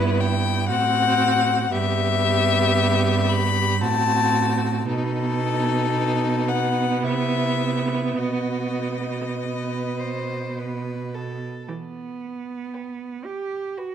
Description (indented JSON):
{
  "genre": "classical, slow romantic movement for string quartet",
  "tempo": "49-62 BPM",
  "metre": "3/4",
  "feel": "rubato",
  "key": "E minor",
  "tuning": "A4 = 440 Hz",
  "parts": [
    { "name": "rich violin", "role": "melody", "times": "0.0-13.9 s", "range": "A4 to B5", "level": "-24 LUFS", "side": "left 8 dB", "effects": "none" },
    { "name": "rich violin", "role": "second line", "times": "0.0-13.9 s", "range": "D#4 to C5", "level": "-31 LUFS", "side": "left 1 dB", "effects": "none" },
    { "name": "rich viola", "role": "accompaniment", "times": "0.0-12.5 s", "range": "E3 to C4", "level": "-26 LUFS", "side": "right 3 dB", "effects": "none" },
    { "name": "rich cello", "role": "bass", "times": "0.0-13.9 s", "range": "G2 to G4", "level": "-25 LUFS", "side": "right 4 dB", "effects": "none" }
  ],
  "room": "light reverb",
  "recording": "close, detailed microphones",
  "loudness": "-20 LUFS",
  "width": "side -8 dB against mid",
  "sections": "0.0-11.7 A section; 11.7-13.9 B section",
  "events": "none",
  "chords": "0.0 Em/G; 0.7 F#dim/A; 1.7 Em/G; 3.8 F#dim/A; 4.9 B7; 7.0 Cmaj7; 8.2 B; 11.7 Em",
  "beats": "0.69 | 1.71 2.76 3.81 | 4.87 5.93 7.02 | 8.18 9.38 10.56 | 11.69 12.73 13.77"
}